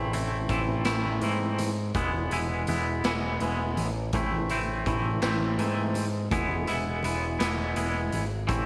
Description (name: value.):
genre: psychedelic rock.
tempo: 55 BPM (dotted quarters).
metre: 6/8.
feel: straight.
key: unclear.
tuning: A4 = 441 Hz.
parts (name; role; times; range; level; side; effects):
twangy electric guitar; riff; 0.0-8.7 s; E3 to E4; -31 LUFS; equal; harmonic tremolo.
growling picked electric bass; bass; 0.0-8.7 s; E1 to G#2; -33 LUFS; equal; overdrive.
raw garage drum kit; drums; 0.1-8.7 s; hi-hat, kick drum, snare drum; -36 LUFS; equal; none.
congas; percussion; 0.5-8.7 s; none; -42 LUFS; equal; none.
room: light reverb, small room reverb.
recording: none.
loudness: -28 LUFS.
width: mono.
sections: 0.0-8.7 A section.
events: none.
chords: 0.0 Am; 1.9 E; 4.1 Am; 6.3 E.